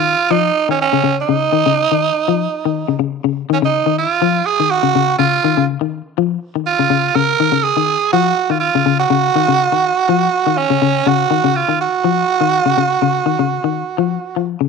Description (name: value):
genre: afrobeat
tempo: 123 BPM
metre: 4/4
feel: swing 54% on 16ths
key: unclear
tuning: A4 = 439 Hz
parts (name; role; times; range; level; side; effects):
- raspy tenor saxophone; melody; 0.0-14.4 s; Db4 to Bb4; -15 LUFS; right 8 dB; none
- semi-hollow electric guitar; arpeggios; 0.0-14.7 s; Db3 to F3; -17 LUFS; left 13 dB; none
room: wet spring reverb, RT60 1.2 s, small room reverb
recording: 1960s-style stereo with parts hard left and right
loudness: -13 LUFS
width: side -5 dB against mid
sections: 0.0-14.7 A section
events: none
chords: 0.0 Dbadd9